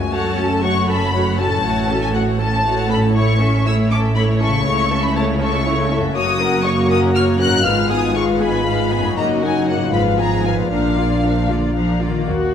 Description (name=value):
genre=cinematic, playful, whimsical film cue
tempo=79 BPM (dotted quarters)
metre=6/8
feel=straight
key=F# minor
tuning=A4 = 440 Hz
part: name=rich studio violin section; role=melody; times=0.0-11.5 s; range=F5 to Gb6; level=-22 LUFS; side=left 3 dB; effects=none
part: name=mellow French horn section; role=sustained chords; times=0.0-12.0 s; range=F3 to F#4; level=-22 LUFS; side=left 2 dB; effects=none
part: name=concert harp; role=arpeggios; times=0.0-12.5 s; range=F#2 to F5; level=-25 LUFS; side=left 8 dB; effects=none
part: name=rich studio violin section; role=second line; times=0.1-12.3 s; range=F4 to A5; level=-25 LUFS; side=left 3 dB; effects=none
part: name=rich studio viola section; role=accompaniment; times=0.1-12.5 s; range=F3 to Bb4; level=-24 LUFS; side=right 1 dB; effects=none
part: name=rich studio cello section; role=bass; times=0.1-12.5 s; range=Eb2 to F3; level=-23 LUFS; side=right 2 dB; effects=none
part: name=rich studio double bass section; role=bass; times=0.1-12.5 s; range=F#1 to Eb2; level=-22 LUFS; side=right 3 dB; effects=none
room=moderate scoring stage reverb, RT60 2.1 s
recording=none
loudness=-15 LUFS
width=side -8 dB against mid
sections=0.1-12.3 A section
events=none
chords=0.1 F#m; 1.6 F#m/A; 3.1 A; 4.6 A/C#; 6.1 Gb; 7.7 Fdim/Ab; 9.2 Ebm/Gb; 9.9 Fdim/Ab; 10.7 Bb